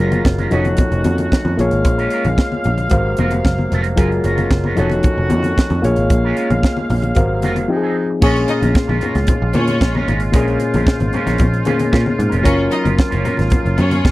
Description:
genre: disco.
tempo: 113 BPM.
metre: 4/4.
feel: straight.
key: Bb minor.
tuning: A4 = 440 Hz.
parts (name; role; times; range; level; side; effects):
electric guitar with an envelope filter; accompaniment; 0.0-14.1 s; F3 to C5; -26 LUFS; right 4 dB; lush chorus.
overdriven reed electric piano; accompaniment; 0.0-14.1 s; Bb2 to F5; -20 LUFS; left 2 dB; none.
warm woodwind section; sustained chords; 0.0-14.1 s; C3 to F5; -24 LUFS; right 1 dB; none.
picked electric bass; bass; 0.0-14.1 s; F1 to Bb2; -18 LUFS; equal; none.
tight funk drum kit; drums; 0.1-14.1 s; crash cymbal, hi-hat, kick drum, snare drum; -16 LUFS; right 1 dB; none.
congas; percussion; 0.1-14.1 s; none; -24 LUFS; left 3 dB; none.
clear studio string section; second line; 8.2-14.1 s; Db4 to Eb5; -22 LUFS; left 1 dB; none.
room: small room ambience.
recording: dry, close 1970s-style studio recording.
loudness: -14 LUFS.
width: side -18 dB against mid.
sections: 0.0-8.2 A section; 8.2-14.1 B section.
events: none.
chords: 0.0 Gbmaj9; 0.5 F7b9b13; 1.6 Bbm7; 2.9 Ab13; 4.0 Gbmaj9; 4.8 F7b9b13; 5.8 Bbm7; 7.2 Ab13; 7.7 Fm7; 8.2 Bbm7; 12.5 Gbmaj7.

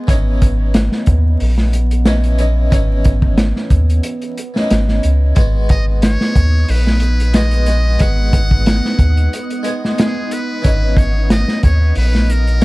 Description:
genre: trip hop.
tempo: 91 BPM.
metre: 4/4.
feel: swing 54% on 16ths.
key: unclear.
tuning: A4 = 440 Hz.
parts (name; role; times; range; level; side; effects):
harpsichord; accompaniment; 0.0-12.6 s; E3 to G#4; -24 LUFS; equal; tremolo.
warbly tape-like pad; sustained chords; 0.0-12.6 s; B3; -26 LUFS; right 1 dB; chorus, built-in reverb, vintage 12-bit sampler grit.
soft dub sub bass; bass; 0.1-12.6 s; G#1 to D#2; -14 LUFS; equal; none.
crunchy breakbeat drum kit; drums; 0.1-12.6 s; hi-hat, kick drum, snare drum; -15 LUFS; equal; none.
wind-like tuned noise texture; texture; 5.9-12.6 s; D#4; -32 LUFS; right 4 dB; built-in reverb.
trumpet with metal mute; melody; 5.7-12.6 s; G#4 to F#5; -24 LUFS; equal; tape echo.
room: studio ambience.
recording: dark, warm production, vinyl crackle.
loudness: -12 LUFS.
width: side -21 dB against mid.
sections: 0.0-12.6 A section.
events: none.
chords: 0.1 C#madd9/G#; 5.4 G#m7; 10.6 C#madd9/G#.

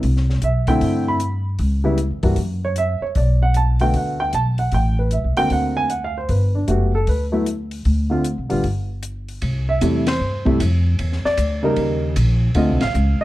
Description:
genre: jazz piano trio.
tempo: 153 BPM.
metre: 4/4.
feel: swing 65% on 8ths.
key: G major.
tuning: A4 = 436 Hz.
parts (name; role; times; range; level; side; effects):
dark baby grand piano; melody; 0.0-13.2 s; C3 to B5; -20 LUFS; right 1 dB; none.
upright bass; bass; 0.0-13.2 s; F#1 to G2; -19 LUFS; equal; none.
compact cocktail drum kit; drums; 0.0-13.1 s; hi-hat, kick drum, ride cymbal, snare drum; -27 LUFS; left 1 dB; none.
room: light reverb.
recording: dark, warm production.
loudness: -17 LUFS.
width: side -16 dB against mid.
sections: 0.0-9.4 A section; 9.4-13.2 B section.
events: band accent 10.0, 12.7.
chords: 0.0 C69; 1.6 C#dim; 2.4 F#5; 3.2 Bm7; 4.7 Am; 5.5 Daug7; 6.3 Gmaj9; 7.9 Dm7; 8.6 N.C.; 9.4 C6; 11.0 E7(b5, no3); 11.8 Eb7; 12.6 Dm7.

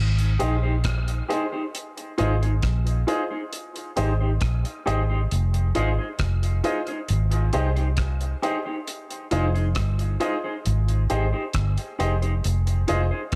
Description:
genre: dub reggae.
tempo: 67 BPM.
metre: 4/4.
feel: straight.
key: F minor.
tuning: A4 = 443 Hz.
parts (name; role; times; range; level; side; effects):
vintage muted fingered electric bass; bass; 0.0-13.4 s; F1 to C2; -24 LUFS; equal; none.
damped 70s drum kit; drums; 0.2-13.4 s; hi-hat, kick drum, rim click; -33 LUFS; equal; none.
mellow electric guitar; accompaniment; 0.4-13.2 s; Eb4 to C5; -34 LUFS; equal; lush chorus, dub echo.
warm baby grand piano; stabs; 0.4-13.0 s; F4 to Eb5; -32 LUFS; equal; dub echo.
room: light reverb, studio ambience.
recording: none.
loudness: -24 LUFS.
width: mono.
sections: 0.0-13.4 A section.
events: none.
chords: 0.0 Abmaj7; 1.7 Fm7; 3.5 Abmaj7; 5.3 Fm7; 7.1 Abmaj7; 8.9 Fm7.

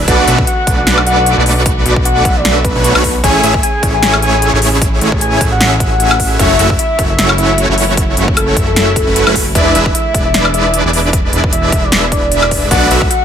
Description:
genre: future bass.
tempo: 152 BPM.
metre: 4/4.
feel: swing 55% on 16ths, half-time.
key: A major.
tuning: A4 = 438 Hz.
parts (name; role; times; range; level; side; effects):
rich chamber string section; sustained chords; 0.0-13.2 s; C#3 to G#4; -24 LUFS; equal; none.
supersaw chords; riff; 0.0-13.1 s; G#3 to E5; -14 LUFS; right 1 dB; sidechain pumping.
fat analog bass; bass; 0.0-13.1 s; E1 to B1; -16 LUFS; equal; sidechain pumping.
soft octave-layered synth lead; melody; 0.1-13.2 s; A4 to G#5; -16 LUFS; left 2 dB; chorus, phaser, sidechain pumping, ping-pong delay.
big-room dance drum kit; drums; 0.1-13.2 s; hi-hat, snare drum, woodblock; -15 LUFS; left 1 dB; overdrive.
electronic kick drum; drums; 0.1-13.1 s; none; -16 LUFS; equal; overdrive.
room: light reverb.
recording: none.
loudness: -9 LUFS.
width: side -8 dB against mid.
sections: 0.0-13.2 A section.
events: none.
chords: 0.1 Bm7; 3.2 Amaj7; 6.4 F#m7; 9.6 E7; 12.7 Bm7.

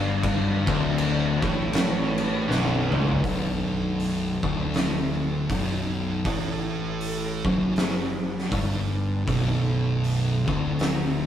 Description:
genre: stoner and doom metal.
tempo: 80 BPM.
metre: 4/4.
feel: swing 58% on 8ths.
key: B minor.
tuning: A4 = 440 Hz.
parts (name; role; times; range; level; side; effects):
metallic inharmonic drone; sustained chords; 0.0-3.2 s; F#3 to D4; -36 LUFS; right 1 dB; none.
thick fuzz guitar; riff; 0.0-11.3 s; B1 to A2; -27 LUFS; left 3 dB; distortion.
thick fuzz guitar; riff; 0.0-11.3 s; B1 to A2; -31 LUFS; right 4 dB; distortion.
tight distorted guitar; riff; 0.0-3.2 s; B1 to A2; -28 LUFS; right 1 dB; distortion.
fuzz fingered electric bass; bass; 0.0-11.3 s; B0 to A1; -31 LUFS; equal; overdrive.
oversized low-tuned drum kit; drums; 0.2-11.0 s; crash cymbal, hi-hat, kick drum, snare drum, toms; -28 LUFS; equal; none.
room: light reverb.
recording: rough rehearsal-room recording.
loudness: -22 LUFS.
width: side -10 dB against mid.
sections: 0.0-3.2 A section; 3.2-11.3 B section.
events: drum fill 2.5-3.2.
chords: 0.0 Bm.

